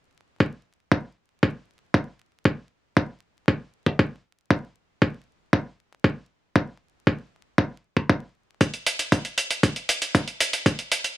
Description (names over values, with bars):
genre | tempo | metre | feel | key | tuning
italo disco | 117 BPM | 4/4 | straight | none | none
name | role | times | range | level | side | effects
electronic kick drum | drums | 0.4-10.8 s | none | -19 LUFS | equal | high-pass filter on kick
electronic hi-hat | drums | 8.6-11.1 s | none | -24 LUFS | right 1 dB | none
room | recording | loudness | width
little or no reverb | bright 1980s-style digital production, vinyl crackle | -22 LUFS | side -17 dB against mid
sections
0.4-11.2 A section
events
none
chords
none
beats
| 0.40 0.92 1.43 1.94 | 2.46 2.97 3.48 3.99 | 4.51 5.02 5.53 6.04 | 6.56 7.07 7.58 8.10 | 8.61 9.12 9.63 10.15 | 10.66